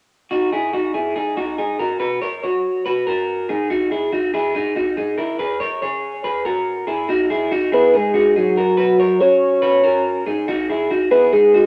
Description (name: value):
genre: indie pop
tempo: 142 BPM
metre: 4/4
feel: straight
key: unclear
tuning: A4 = 438 Hz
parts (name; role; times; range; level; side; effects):
- electric guitar through a small old amp; arpeggios; 0.3-11.7 s; D#4 to C#5; -21 LUFS; equal; tube saturation, lush chorus, cassette tape, plate reverb
- soft octave-layered synth lead; melody; 7.7-11.7 s; F#4 to C#5; -16 LUFS; equal; chorus, cassette tape
room: wet studio reverb, RT60 0.6 s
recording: home recording on cassette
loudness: -19 LUFS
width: mono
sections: 0.3-7.1 A section; 7.1-11.7 B section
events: none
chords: 0.3 D#madd11; 2.0 F#sus4; 3.5 G#5; 5.2 E; 7.1 D#madd11; 8.8 F#sus4; 10.3 G#5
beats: | 0.31 0.74 1.16 1.58 | 2.01 2.43 2.86 3.28 | 3.70 4.13 4.55 4.97 | 5.40 5.82 6.24 6.67 | 7.09 7.51 7.94 8.36 | 8.79 9.21 9.63 10.06 | 10.48 10.91 11.33